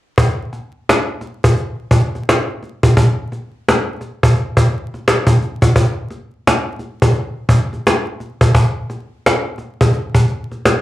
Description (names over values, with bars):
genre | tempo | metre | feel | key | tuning
R&B | 86 BPM | 4/4 | swing 59% on 16ths | none | none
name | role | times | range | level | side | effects
cajon | drums | 0.2-10.8 s | none | -13 LUFS | equal | slapback echo
room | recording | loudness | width
moderate club reverb, RT60 0.6 s | live gig heard through the venue's PA, club reverb, vinyl crackle | -14 LUFS | side -15 dB against mid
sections
0.2-10.8 A section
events
none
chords
none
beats
| 0.17 0.87 1.57 2.27 | 2.97 3.66 4.36 5.06 | 5.76 6.46 7.15 7.85 | 8.55 9.24 9.94 10.64